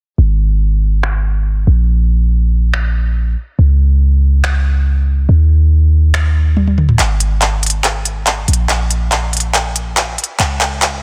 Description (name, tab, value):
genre	future bass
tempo	141 BPM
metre	4/4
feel	half-time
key	unclear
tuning	A4 = 436 Hz
part	warm 808-style bass	bass	0.2-11.0 s	Ab1 to Eb2	-14 LUFS	equal	none
part	trap drum kit	drums	1.0-10.9 s	finger snaps, handclaps, hi-hat, toms	-18 LUFS	equal	soft clipping on snare, high-pass filter on snare, low-pass filter on snare, high-pass filter on toms, low-pass filter on toms, high-pass filter on hats, low-pass filter on hats
room	little or no reverb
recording	dense, heavily limited modern master, high-pass filter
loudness	-14 LUFS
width	mono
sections	0.2-7.0 A section; 7.0-11.0 B section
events	drum fill 6.6-7.0, 7.0-11.0; build-up 7.0-11.0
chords	none